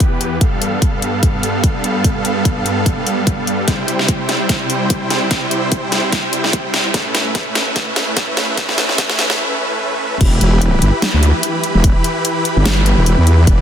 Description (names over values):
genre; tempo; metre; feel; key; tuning
heavy wobble dubstep; 147 BPM; 4/4; swing 55% on 16ths, half-time; E phrygian; A4 = 440 Hz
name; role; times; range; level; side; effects
supersaw chords; sustained chords; 0.0-13.6 s; E2 to B5; -18 LUFS; right 1 dB; vintage 12-bit sampler grit, sidechain pumping, low-pass filter
dubstep drum kit; drums; 0.0-13.6 s; crash cymbal, hi-hat, snare drum; -18 LUFS; left 1 dB; high-pass filter on hats, high-pass filter on snare, high-pass filter on cymbals, high-pass filter on room
electronic kick drum; drums; 0.0-13.6 s; none; -16 LUFS; equal; none
wobble bass; bass; 10.2-13.6 s; E1 to E2; -12 LUFS; equal; chorus, overdrive
room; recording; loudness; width
light reverb; dense, heavily limited modern master, high-pass filter; -13 LUFS; side -9 dB against mid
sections
0.0-10.2 A section; 10.2-13.6 B section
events
build-up 0.0-10.2; filter sweep 0.0-10.2; drum fill 3.7-9.4; break 9.4-10.2; drop 10.2-13.6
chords
0.4 G7; 3.7 C; 6.9 Aadd9; 10.2 Em